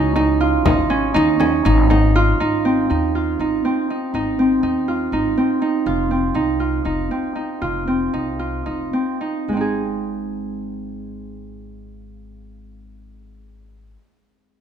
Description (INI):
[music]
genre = contemporary instrumental, chamber music in an uneven meter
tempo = 216-244 BPM (eighths)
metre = 7/8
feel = straight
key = Ab major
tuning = A4 = 440 Hz
[part]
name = Celtic harp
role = arpeggios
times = 0.0-14.1 s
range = Ab3 to Ab4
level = -18 LUFS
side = right 2 dB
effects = none
[part]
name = upright bass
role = bass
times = 0.0-13.9 s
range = F1 to Eb2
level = -23 LUFS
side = left 2 dB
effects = none
[part]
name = frame drum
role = percussion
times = 0.2-2.1 s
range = none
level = -23 LUFS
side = left 3 dB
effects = none
[sound]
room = light reverb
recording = none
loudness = -17 LUFS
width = side -8 dB against mid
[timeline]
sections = 0.0-2.4 A section; 2.4-9.5 B section; 9.5-13.3 C section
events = slowing down 5.9-9.5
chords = 0.0 Ab5; 2.4 Ab; 5.9 F5; 9.5 Ab